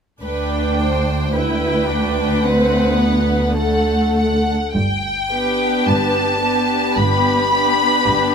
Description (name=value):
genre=classical, slow romantic movement for string orchestra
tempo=54 BPM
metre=4/4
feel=rubato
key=G major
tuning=A4 = 440 Hz
part: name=rich studio violin section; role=melody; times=0.2-8.3 s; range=F#5 to B5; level=-20 LUFS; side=equal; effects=none
part: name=warm chamber violin section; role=second line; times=0.2-8.3 s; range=G4 to C5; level=-21 LUFS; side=equal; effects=none
part: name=warm chamber viola section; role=accompaniment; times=0.2-8.3 s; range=A3 to E4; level=-22 LUFS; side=left 2 dB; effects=none
part: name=warm chamber cello section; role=bass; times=0.2-8.3 s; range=D2 to G2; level=-24 LUFS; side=right 2 dB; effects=none
part: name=warm chamber double bass section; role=bass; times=0.2-8.3 s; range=G1 to D2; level=-22 LUFS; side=right 1 dB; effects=none
room=light reverb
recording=close, detailed microphones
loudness=-15 LUFS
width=side -6 dB against mid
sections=0.2-4.8 A section; 4.8-8.3 B section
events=none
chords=0.2 G/D; 2.4 D6; 4.8 G